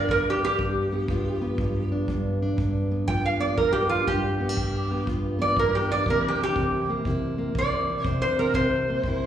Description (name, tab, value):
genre	acoustic country blues, solo or duo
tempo	121 BPM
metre	4/4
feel	swing 65% on 8ths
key	G mixolydian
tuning	A4 = 437 Hz
part	metal-body resonator slide guitar	melody	0.0-9.3 s	F4 to G5	-24 LUFS	right 1 dB	slapback echo
part	fingerpicked plugged-in steel-string acoustic guitar	accompaniment	0.0-9.3 s	G2 to F4	-26 LUFS	equal	slapback echo
part	kick drum	drums	0.1-9.2 s	none	-32 LUFS	equal	none
room	light reverb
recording	live gig heard through the venue's PA, recital hall reverb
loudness	-22 LUFS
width	side -10 dB against mid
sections	0.0-9.3 A section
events	none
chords	0.0 G7; 6.1 C7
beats	| 0.10 0.59 1.09 1.59 | 2.09 2.58 3.08 3.58 | 4.08 4.57 5.07 5.57 | 6.06 6.56 7.05 7.55 | 8.04 8.54 9.04